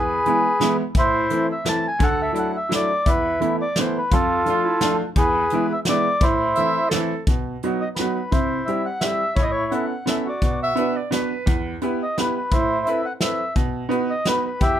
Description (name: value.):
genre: musette waltz.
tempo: 171 BPM.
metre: 3/4.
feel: straight.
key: A harmonic minor.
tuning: A4 = 442 Hz.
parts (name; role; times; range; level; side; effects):
mellow accordion; melody; 0.0-14.8 s; E4 to A5; -21 LUFS; equal; none.
clear upright piano; accompaniment; 0.0-14.8 s; D2 to B4; -24 LUFS; right 2 dB; none.
soft brush drum kit; drums; 0.3-14.7 s; hi-hat, kick drum, snare drum; -22 LUFS; equal; none.
bright clarinet; second line; 4.5-7.3, 10.6-11.8 s; D4 to E5; -26 LUFS; right 2 dB; none.
room: light reverb.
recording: close, detailed microphones.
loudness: -19 LUFS.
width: side -10 dB against mid.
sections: 0.0-7.3 A section; 7.3-14.8 B section.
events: none.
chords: 0.0 E; 1.0 Am; 2.0 Dadd9; 3.1 Esus4; 4.1 Dm/F; 5.2 E; 6.2 Am; 7.3 B; 8.3 C; 9.4 Aadd9; 10.4 Bm; 11.5 Em; 12.5 Amadd9; 13.6 B.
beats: 0.27 0.62 | 0.96 1.31 1.66 | 2.01 2.36 2.71 | 3.07 3.42 3.77 | 4.12 4.47 4.82 | 5.17 5.52 5.87 | 6.22 6.57 6.92 | 7.28 7.63 7.98 | 8.33 8.68 9.02 | 9.37 9.72 10.07 | 10.42 10.77 11.12 | 11.47 11.82 12.17 | 12.52 12.87 13.22 | 13.57 13.92 14.27 | 14.62.